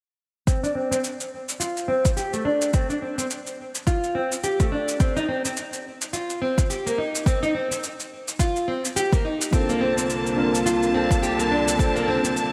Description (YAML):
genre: organic downtempo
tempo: 106 BPM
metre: 4/4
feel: swing 58% on 16ths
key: unclear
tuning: A4 = 439 Hz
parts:
  - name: nylon-string guitar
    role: arpeggios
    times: 0.5-12.3 s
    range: A3 to G4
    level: -27 LUFS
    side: equal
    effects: lush chorus, low-pass filter, digital delay
  - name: electronic kick drum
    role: drums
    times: 0.5-11.9 s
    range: none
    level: -24 LUFS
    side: equal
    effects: overdrive
  - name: shaker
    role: drums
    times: 0.5-12.5 s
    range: none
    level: -32 LUFS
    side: equal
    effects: overdrive
  - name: mellow tine electric piano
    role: accompaniment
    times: 9.5-12.5 s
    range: Bb3 to Bb4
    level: -26 LUFS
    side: equal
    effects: analog chorus, sidechain pumping, digital delay
  - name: clear studio string section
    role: sustained chords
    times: 9.5-12.5 s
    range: C2 to A5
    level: -28 LUFS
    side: equal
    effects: sidechain pumping
room: wet lush hall reverb, RT60 2.0 s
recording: bright 1980s-style digital production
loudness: -24 LUFS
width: mono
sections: 0.5-12.5 A section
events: filter sweep on nylon-string guitar 0.5-12.5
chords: 0.5 Dm7; 5.0 Cm; 9.5 Bbmaj7/C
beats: | 0.48 1.04 1.61 2.17 | 2.74 3.31 3.87 4.44 | 5.00 5.57 6.14 6.70 | 7.27 7.83 8.40 8.97 | 9.53 10.10 10.66 11.23 | 11.80 12.36